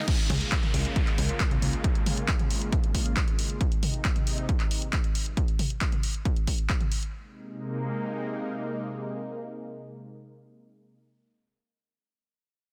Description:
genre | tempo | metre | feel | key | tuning
uplifting trance | 136 BPM | 4/4 | straight | Ab major | A4 = 439 Hz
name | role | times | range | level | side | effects
lush unison pad | sustained chords | 0.0-10.9 s | C3 to F4 | -37 LUFS | equal | chorus, phaser, sidechain pumping
electronic kick drum | drums | 0.1-6.8 s | none | -28 LUFS | equal | none
punchy analog drum machine | drums | 0.1-7.1 s | crash cymbal, handclaps, hi-hat, toms | -34 LUFS | equal | none
downlifter | sound effects | 0.1-3.6 s | none | -40 LUFS | equal | none
plucky analog bass | bass | 0.3-1.8 s | Db2 | -30 LUFS | equal | sidechain pumping
room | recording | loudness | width
digital ambience | dense, heavily limited modern master | -28 LUFS | mono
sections
0.1-7.1 A section; 7.1-10.7 B section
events
filter sweep on analog synth bass 0.1-1.8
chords
0.1 Db6; 3.6 Abadd9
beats
| 0.08 0.52 0.96 1.40 | 1.84 2.28 2.73 3.17 | 3.61 4.05 4.49 4.93 | 5.37 5.81 6.25 6.70 | 7.14 7.58 8.02 8.46 | 8.90 9.34 9.78 10.22

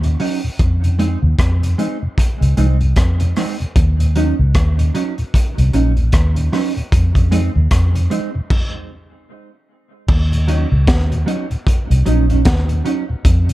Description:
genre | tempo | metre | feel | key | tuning
roots reggae | 76 BPM | 4/4 | swing 59% on 16ths | Eb dorian | A4 = 438 Hz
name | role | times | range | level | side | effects
mellow electric guitar | accompaniment | 0.0-13.1 s | Gb3 to Eb4 | -23 LUFS | right 4 dB | wide subtle chorus, tape echo
mellow tonewheel organ | accompaniment | 0.0-13.5 s | Eb2 to Eb4 | -22 LUFS | left 1 dB | slow rotary speaker
vintage muted fingered electric bass | bass | 0.0-13.5 s | Bb1 to F2 | -14 LUFS | equal | none
crunchy breakbeat drum kit | drums | 0.0-13.5 s | crash cymbal, hi-hat, kick drum, rim click, snare drum | -18 LUFS | equal | none
room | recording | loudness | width
small room ambience | echo-heavy mix | -14 LUFS | side -16 dB against mid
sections
0.0-10.1 A section; 10.1-13.5 B section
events
stop 8.5-10.1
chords
0.0 Ebm7; 0.6 Fm7; 3.8 Ebm7; 6.9 Fm7; 10.1 Ebm7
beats
| 0.59 1.39 2.18 2.97 | 3.76 4.55 5.34 6.13 | 6.92 7.71 8.50 9.29 | 10.09 10.88 11.67 12.46 | 13.25

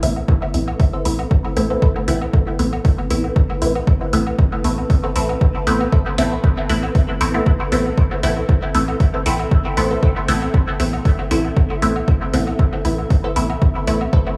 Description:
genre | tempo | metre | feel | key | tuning
dub techno | 117 BPM | 4/4 | swing 53% on 16ths | A minor | A4 = 440 Hz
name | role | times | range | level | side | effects
granular cloud pad | sustained chords | 0.0-14.4 s | C4 to E5 | -30 LUFS | equal | built-in reverb, sidechain pumping
filtered dub chord stab | stabs | 0.0-14.1 s | A3 to E4 | -24 LUFS | equal | phaser, sidechain pumping, dub echo
soft dub sub bass | bass | 0.0-14.0 s | A1 | -24 LUFS | equal | sidechain pumping
electronic hi-hat | drums | 0.0-14.0 s | none | -34 LUFS | equal | overdrive
congas and woodblock | percussion | 0.0-14.4 s | none | -34 LUFS | equal | sidechain pumping on perc, dub echo
electronic kick drum | drums | 0.3-14.2 s | none | -18 LUFS | equal | overdrive
wavetable chord stab | riff | 0.9-1.9, 5.0-6.0, 9.1-10.1, 13.2-14.2 s | A4 to E5 | -32 LUFS | equal | sidechain pumping, dub echo
room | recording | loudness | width
light reverb | dry, gritty hardware recording, small room ambience | -18 LUFS | mono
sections
0.0-14.4 A section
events
none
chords
0.0 Amadd9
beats
0.28 0.80 1.31 | 1.82 2.33 2.85 3.36 | 3.87 4.39 4.90 5.41 | 5.92 6.44 6.95 7.46 | 7.98 8.49 9.00 9.52 | 10.03 10.54 11.05 11.57 | 12.08 12.59 13.11 13.62 | 14.13

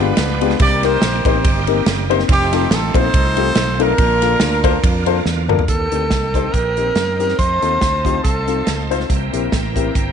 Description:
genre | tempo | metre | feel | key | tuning
uptempo gospel | 141 BPM | 4/4 | swing 55% on 8ths | unclear | A4 = 444 Hz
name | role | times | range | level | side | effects
clear horn section | melody | 0.0-5.3 s | B3 to D5 | -19 LUFS | right 2 dB | tape echo
dark upright piano | accompaniment | 0.0-9.9 s | G2 to C5 | -20 LUFS | left 12 dB | none
bright tonewheel organ | sustained chords | 0.0-10.1 s | D3 to G4 | -27 LUFS | right 11 dB | slow rotary speaker, chorus vibrato
fingered electric bass | bass | 0.0-10.1 s | F1 to Gb2 | -21 LUFS | right 1 dB | none
natural country drum kit | drums | 0.2-10.1 s | hi-hat, kick drum, ride cymbal, snare drum, toms | -19 LUFS | right 1 dB | none
breathy tenor saxophone | melody | 5.7-8.9 s | A4 to C5 | -20 LUFS | right 1 dB | tape echo
muted studio string section | sustained chords | 5.7-10.1 s | C5 to Bb5 | -30 LUFS | left 2 dB | none
room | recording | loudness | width
light reverb, small room ambience | 1960s-style stereo with parts hard left and right, nothing above 10.6 kHz | -14 LUFS | side -7 dB against mid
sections
0.0-5.7 A section; 5.7-10.1 B section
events
drum fill 5.3-5.7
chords
0.0 G7b9; 0.6 Cm7; 2.3 F7; 4.0 Bbmaj7; 5.7 Eb6; 7.4 F7; 9.1 C7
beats
0.17 | 0.60 1.02 1.44 1.86 | 2.29 2.71 3.13 3.56 | 3.98 4.41 4.83 5.25 | 5.68 6.11 6.53 6.96 | 7.39 7.81 8.24 8.67 | 9.10 9.52 9.95

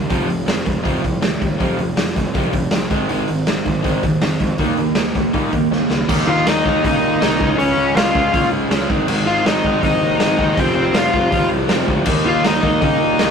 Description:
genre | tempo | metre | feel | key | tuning
punk rock | 160 BPM | 4/4 | straight | Ab major | A4 = 439 Hz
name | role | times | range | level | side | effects
overdriven electric guitar | riff | 0.0-13.3 s | F2 to Eb4 | -23 LUFS | left 5 dB | none
raw garage guitar | riff | 0.0-13.3 s | F2 to Eb4 | -21 LUFS | right 6 dB | overdrive
fuzz picked electric bass | bass | 0.0-13.3 s | F1 to Db3 | -24 LUFS | left 1 dB | overdrive
raw garage drum kit | drums | 0.1-13.3 s | crash cymbal, hi-hat, kick drum, snare drum | -20 LUFS | equal | none
dark smooth lead guitar | melody | 6.3-13.3 s | C4 to F5 | -17 LUFS | left 2 dB | overdrive
room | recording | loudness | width
light reverb | rough rehearsal-room recording | -15 LUFS | side -6 dB against mid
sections
0.0-6.1 A section; 6.1-13.3 B section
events
drum fill 5.7-6.1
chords
0.1 F5; 2.9 Ab5; 4.6 Eb5; 7.4 Db; 8.9 Ab5; 10.6 F5; 12.1 Eb5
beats
| 0.10 0.47 0.85 1.22 | 1.60 1.97 2.35 2.72 | 3.09 3.47 3.84 4.21 | 4.59 4.96 5.34 5.71 | 6.08 6.46 6.83 7.21 | 7.58 7.95 8.33 8.70 | 9.07 9.45 9.82 10.20 | 10.57 10.95 11.32 11.70 | 12.07 12.44 12.82 13.19

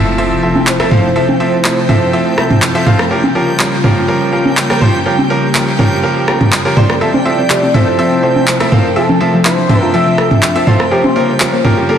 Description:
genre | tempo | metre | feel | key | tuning
progressive house | 123 BPM | 4/4 | straight | F major | A4 = 440 Hz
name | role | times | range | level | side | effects
airy breathy pad | sustained chords | 0.0-12.0 s | C3 to G4 | -18 LUFS | left 1 dB | chorus
bright grand piano | stabs | 0.0-12.0 s | F3 to F5 | -16 LUFS | right 1 dB | digital delay
impact | sound effects | 0.0-1.2 s | none | -25 LUFS | equal | none
backwards swelling texture | texture | 0.4-12.0 s | G5 to G6 | -26 LUFS | right 2 dB | built-in reverb
punchy analog drum machine | percussion | 0.6-11.7 s | congas, rim click, toms | -14 LUFS | equal | soft clipping on snare
expressive synth lead | melody | 0.7-2.8, 6.8-12.0 s | A4 to E5 | -17 LUFS | equal | wide subtle chorus, digital delay
electronic handclaps | drums | 0.7-11.5 s | none | -19 LUFS | equal | overdrive
soft round pluck | arpeggios | 7.0-12.0 s | F3 to C5 | -17 LUFS | equal | lush chorus, digital delay
room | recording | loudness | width
moderate huge ambient reverb, RT60 4.2 s | dense, heavily limited modern master | -9 LUFS | side -8 dB against mid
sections
0.0-12.0 A section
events
impact 0.0-1.2; filter sweep on analog synth pad 0.0-12.0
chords
0.0 Fmaj7; 3.1 Bbm6; 7.0 Fmaj7; 10.9 Bbm6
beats
0.18 0.67 | 1.16 1.65 2.13 2.62 | 3.11 3.60 4.08 4.57 | 5.06 5.55 6.04 6.52 | 7.01 7.50 7.99 8.47 | 8.96 9.45 9.94 10.43 | 10.91 11.40 11.89

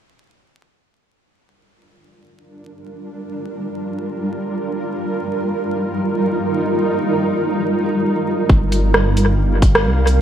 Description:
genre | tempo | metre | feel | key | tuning
future garage | free time | none | none | G minor | A4 = 440 Hz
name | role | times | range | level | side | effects
granular cloud pad | sustained chords | 2.9-10.2 s | G3 to F5 | -19 LUFS | right 1 dB | built-in reverb, sidechain pumping
dark detuned saw bass | bass | 8.5-10.2 s | G1 to C2 | -16 LUFS | equal | sidechain pumping
electronic kick drum | drums | 8.5-9.7 s | none | -12 LUFS | equal | small room ambience
garage drum kit | drums | 8.7-10.2 s | hi-hat, rim click | -18 LUFS | right 1 dB | small room ambience, dub echo
room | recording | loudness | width
light reverb | echo-heavy mix, vinyl crackle | -16 LUFS | side -10 dB against mid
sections
1.3-8.5 A section; 8.5-10.2 B section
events
fade-in on ambient pad 1.3-8.5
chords
1.3 Gm7; 4.9 Ebadd9/G; 8.5 Gm7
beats
free time

